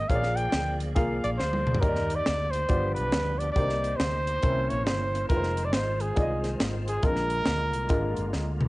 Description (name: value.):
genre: uptempo gospel.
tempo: 138 BPM.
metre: 4/4.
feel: swing 64% on 8ths.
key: unclear.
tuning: A4 = 439 Hz.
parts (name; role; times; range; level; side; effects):
mellow trumpet; melody; 0.0-8.3 s; Ab4 to G5; -29 LUFS; equal; cassette tape.
bright tonewheel organ; sustained chords; 0.0-8.7 s; D3 to D5; -37 LUFS; right 1 dB; slow rotary speaker, chorus vibrato, cassette tape.
fretless electric bass; bass; 0.0-8.7 s; F1 to Eb2; -31 LUFS; equal; wide subtle chorus.
dark baby grand piano; accompaniment; 0.1-8.5 s; G2 to F5; -32 LUFS; left 1 dB; cassette tape.
crisp fusion drum kit; drums; 0.1-8.7 s; hi-hat, kick drum, snare drum, toms; -29 LUFS; equal; cassette tape.
room: small room ambience.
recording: home recording on cassette, nothing above 10.3 kHz.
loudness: -24 LUFS.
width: side -20 dB against mid.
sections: 0.0-8.7 A section.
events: drum fill 1.4-1.8, 8.3-8.7.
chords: 0.1 Bb7; 1.8 Ebmaj7; 2.7 G7; 3.6 Cm7; 4.4 C7b9; 5.3 Fm7; 7.0 Bb7.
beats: | 0.09 0.52 0.96 1.39 | 1.82 2.26 2.69 3.12 | 3.56 3.99 4.43 4.86 | 5.29 5.73 6.16 6.59 | 7.03 7.46 7.89 8.32.